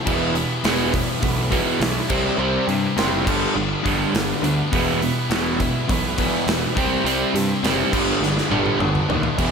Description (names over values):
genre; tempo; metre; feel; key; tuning
hard rock; 103 BPM; 4/4; straight; E minor; A4 = 441 Hz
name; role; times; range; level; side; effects
distorted electric guitar; riff; 0.0-9.5 s; G2 to E4; -26 LUFS; right 1 dB; overdrive
overdriven semi-hollow guitar; riff; 0.0-9.5 s; E2 to C4; -25 LUFS; left 10 dB; none
crunchy overdriven guitar; riff; 0.1-9.5 s; E2 to C4; -24 LUFS; right 11 dB; phaser
fuzz picked electric bass; bass; 0.1-9.5 s; E1 to G2; -27 LUFS; equal; overdrive
gated 80s drum kit; drums; 0.1-9.5 s; crash cymbal, hi-hat, kick drum, snare drum, toms; -24 LUFS; equal; none
room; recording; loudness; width
small room ambience; none; -18 LUFS; side -6 dB against mid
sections
0.0-9.5 A section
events
drum fill 8.2-9.4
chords
0.1 Em; 2.1 C; 3.3 G; 4.7 Em; 6.8 C; 7.9 G